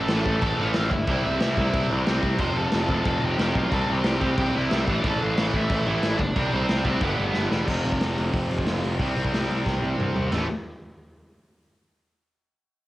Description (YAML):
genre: punk rock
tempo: 182 BPM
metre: 4/4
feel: straight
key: A minor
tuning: A4 = 439 Hz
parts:
  - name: biting overdriven guitar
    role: melody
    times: 0.0-7.5 s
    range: B3 to C6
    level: -30 LUFS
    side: equal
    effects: cassette tape
  - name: distorted electric guitar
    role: riff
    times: 0.0-10.5 s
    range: F2 to C4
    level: -29 LUFS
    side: right 5 dB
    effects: overdrive, cassette tape
  - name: tight distorted guitar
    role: riff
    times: 0.0-10.5 s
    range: F2 to C4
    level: -30 LUFS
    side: left 5 dB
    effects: distortion, cassette tape
  - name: fuzz picked electric bass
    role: bass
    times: 0.0-10.5 s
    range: E1 to C2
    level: -26 LUFS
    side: equal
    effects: overdrive
  - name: raw garage drum kit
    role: drums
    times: 0.1-10.4 s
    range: china cymbal, crash cymbal, hi-hat, kick drum, snare drum, toms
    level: -27 LUFS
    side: equal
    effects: cassette tape
room: studio reverb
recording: home recording on cassette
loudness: -21 LUFS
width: side -16 dB against mid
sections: 0.0-7.7 A section; 7.7-10.3 B section; 10.3-11.6 C section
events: drum fill 7.3-7.7, 9.7-10.3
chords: 0.0 A5; 1.1 C; 2.4 F; 3.7 C; 4.9 A5; 6.4 C5; 7.0 G; 7.7 F5; 9.0 C5; 10.3 A5